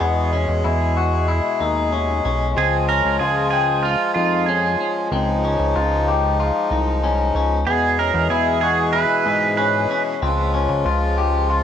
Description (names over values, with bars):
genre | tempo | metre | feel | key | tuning
dream pop | 94 BPM | 4/4 | straight | unclear | A4 = 441 Hz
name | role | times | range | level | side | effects
accordion | sustained chords | 0.0-11.6 s | B2 to G#4 | -23 LUFS | equal | cassette tape
clean electric guitar | arpeggios | 0.0-11.6 s | B3 to G5 | -23 LUFS | left 8 dB | lush chorus, cassette tape, analog delay
chorused synth bass | bass | 0.0-11.6 s | B1 to G#2 | -22 LUFS | right 1 dB | none
pedal steel guitar | melody | 2.6-10.0 s | F4 to B4 | -21 LUFS | right 7 dB | cassette tape, analog delay
room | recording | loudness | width
wet studio ambience, RT60 0.5 s | home recording on cassette | -17 LUFS | side -9 dB against mid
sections
0.0-11.6 A section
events
none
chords
0.0 E; 2.6 Db; 7.7 E; 10.2 Db